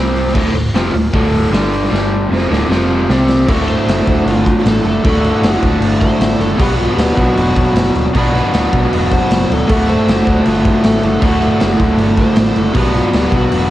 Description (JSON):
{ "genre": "garage rock duo or trio", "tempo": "155 BPM", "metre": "4/4", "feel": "straight", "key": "D major", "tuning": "A4 = 440 Hz", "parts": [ { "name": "overdriven electric guitar", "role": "riff", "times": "0.0-13.7 s", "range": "D2 to B4", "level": "-14 LUFS", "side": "equal", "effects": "none" }, { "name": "hollow-body short-scale fingered electric bass", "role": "bass", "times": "0.0-13.7 s", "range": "D1 to C2", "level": "-19 LUFS", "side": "equal", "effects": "tube saturation" }, { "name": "raw garage drum kit", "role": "drums", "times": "0.2-13.6 s", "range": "crash cymbal, hi-hat, kick drum, snare drum", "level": "-16 LUFS", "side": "equal", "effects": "cassette tape" }, { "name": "overdriven slide guitar", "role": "melody", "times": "3.7-13.7 s", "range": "F4 to C5", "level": "-22 LUFS", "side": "equal", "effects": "cassette tape" } ], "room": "small room reverb", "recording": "home recording on cassette", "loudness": "-11 LUFS", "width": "side -14 dB against mid", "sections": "0.0-3.5 A section; 3.5-13.7 B section", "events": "drum fill 1.9-3.5", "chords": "0.3 D5; 1.5 G5; 2.3 D5; 2.7 F5; 3.1 C5; 3.5 D; 6.6 Bm; 9.7 D; 12.8 Bm", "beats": "| 0.34 0.73 1.13 1.52 | 1.92 2.31 2.70 3.09 | 3.48 3.88 4.27 4.66 | 5.05 5.44 5.83 6.22 | 6.60 6.99 7.38 7.77 | 8.15 8.54 8.92 9.31 | 9.69 10.08 10.46 10.84 | 11.23 11.61 11.99 12.37 | 12.76 13.14 13.52" }